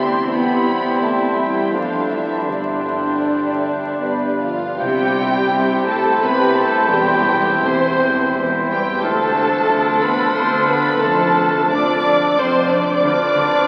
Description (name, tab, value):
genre	classical, slow romantic movement for symphony orchestra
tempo	73-94 BPM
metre	3/4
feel	rubato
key	C major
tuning	A4 = 440 Hz
part	dark studio violin section	melody	0.0-13.7 s	D5 to D6	-26 LUFS	equal	none
part	bright clarinet	second line	0.0-13.7 s	D4 to E4	-27 LUFS	equal	none
part	mellow silver concert flute	second line	0.0-13.7 s	C5 to G6	-28 LUFS	equal	none
part	warm oboe	second line	0.0-13.7 s	A4 to C5	-28 LUFS	equal	none
part	warm symphonic violin section	second line	0.0-13.7 s	F4 to G5	-29 LUFS	equal	none
part	mellow bassoon	accompaniment	0.0-13.7 s	C3 to A3	-27 LUFS	equal	none
part	warm chamber viola section	accompaniment	0.0-13.7 s	B3 to D5	-25 LUFS	equal	none
part	dark French horn section	sustained chords	0.0-13.7 s	D3 to D4	-27 LUFS	equal	none
part	warm symphonic cello section	bass	0.0-13.4 s	D2 to C4	-27 LUFS	equal	none
part	warm symphonic double bass section	bass	0.0-13.4 s	E1 to G2	-35 LUFS	equal	none
part	timpani	percussion	6.9-8.0 s	E2	-41 LUFS	equal	none
room	wet cathedral reverb, RT60 6.6 s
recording	very old 78 rpm record, vinyl crackle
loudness	-17 LUFS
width	mono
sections	0.0-4.8 A section; 4.8-13.7 B section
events	none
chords	0.3 C/E; 1.7 Dm7/F; 2.5 Gsus4; 4.0 G; 4.8 C; 6.9 C/E; 9.0 Dm; 11.0 Dm/F; 13.0 Bdim/D